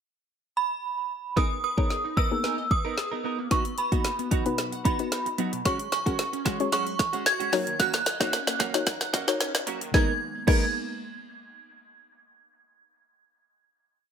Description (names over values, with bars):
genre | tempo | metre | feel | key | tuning
dance-pop | 112 BPM | 4/4 | straight | G# minor | A4 = 440 Hz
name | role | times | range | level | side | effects
synth chime | melody | 0.6-10.7 s | B5 to G#6 | -29 LUFS | right 3 dB | ensemble chorus, dub echo
soft round pluck | accompaniment | 1.4-10.7 s | A#3 to C#5 | -31 LUFS | left 7 dB | chorus, sidechain pumping
glassy wavetable pluck | arpeggios | 1.4-10.7 s | B2 to F#6 | -37 LUFS | equal | chorus, sidechain pumping, dub echo
direct-recorded clean electric guitar | riff | 1.4-10.6 s | G#3 to A#4 | -33 LUFS | right 8 dB | lush chorus
deep house drum kit | drums | 1.4-10.6 s | crash cymbal, hi-hat, kick drum, snare drum | -26 LUFS | equal | none
room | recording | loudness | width
light reverb, digital ambience | high-pass filter | -24 LUFS | side -7 dB against mid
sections
0.0-1.4 pickup bar; 1.4-9.9 build; 9.9-12.1 final chord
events
build-up 1.4-9.9; drum fill 1.4-9.9; filter sweep 1.4-9.9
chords
0.0 N.C.; 1.4 G#madd9; 3.5 B; 5.7 F#sus2; 7.5 D#m7; 9.9 G#madd9